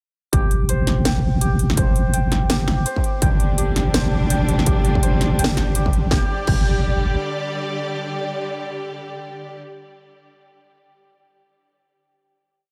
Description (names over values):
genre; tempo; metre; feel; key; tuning
half-time drum and bass; 166 BPM; 4/4; swing 59% on 16ths, half-time; unclear; A4 = 440 Hz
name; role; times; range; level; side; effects
santur; arpeggios; 0.3-9.6 s; G4 to G5; -30 LUFS; equal; digital delay
deep soft wobble bass; bass; 0.3-7.2 s; G1 to A1; -21 LUFS; equal; chorus, tube saturation
drum and bass drum kit; drums; 0.3-6.6 s; crash cymbal, hi-hat, snare drum; -26 LUFS; equal; none
electronic kick drum; drums; 0.3-6.6 s; none; -22 LUFS; equal; distortion
clear symphonic string section; sustained chords; 3.2-9.6 s; D3 to D5; -29 LUFS; equal; sidechain pumping
room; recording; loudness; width
little or no reverb; none; -20 LUFS; mono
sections
0.3-6.1 drop; 6.1-9.0 final chord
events
drop 0.3-6.1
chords
0.3 G5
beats
| 0.33 0.69 1.05 1.41 | 1.77 2.14 2.50 2.86 | 3.22 3.58 3.94 4.30 | 4.67 5.03 5.39 5.75 | 6.11 6.47 6.84 7.20 | 7.56 7.92 8.28 8.64